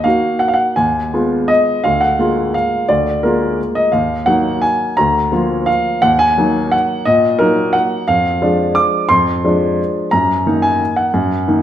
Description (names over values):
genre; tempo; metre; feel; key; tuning
classical, piano waltz; 162-187 BPM; 3/4; rubato; Eb minor; A4 = 444 Hz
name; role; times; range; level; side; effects
warm grand piano; solo; 0.0-11.6 s; D2 to D6; -12 LUFS; equal; none
room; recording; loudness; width
moderate recital hall reverb, RT60 1.4 s; none; -12 LUFS; side -10 dB against mid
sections
0.0-11.6 A section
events
none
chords
0.0 Ebm; 0.8 Fm7b5/Eb; 1.8 Bb7/D; 3.9 Ebm; 5.0 Bb/D; 6.0 Ebm; 8.1 Ddim/F; 10.1 Ebm/Gb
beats
0.05 0.41 | 0.77 1.13 1.50 | 1.84 2.18 2.54 | 2.88 3.23 3.58 | 3.92 4.26 4.62 | 4.97 5.31 5.67 | 6.03 6.38 6.73 | 7.07 7.39 7.74 | 8.07 8.40 8.75 | 9.09 9.44 9.79 | 10.12 10.46 10.80 | 11.13 11.47